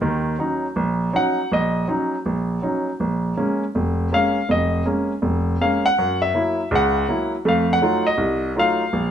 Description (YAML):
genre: solo jazz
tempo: 162 BPM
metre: 4/4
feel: swing 66% on 8ths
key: Bb minor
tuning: A4 = 439 Hz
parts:
  - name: warm grand piano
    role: solo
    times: 0.0-9.1 s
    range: F1 to Gb5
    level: -18 LUFS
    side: equal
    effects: none
room: moderate large studio reverb, RT60 1.4 s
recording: none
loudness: -18 LUFS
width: side -9 dB against mid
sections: 0.0-9.1 A section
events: grand piano solo 0.0-9.1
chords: 0.0 Ebm7; 3.0 Bbm7; 6.0 Gb7; 7.5 F7b9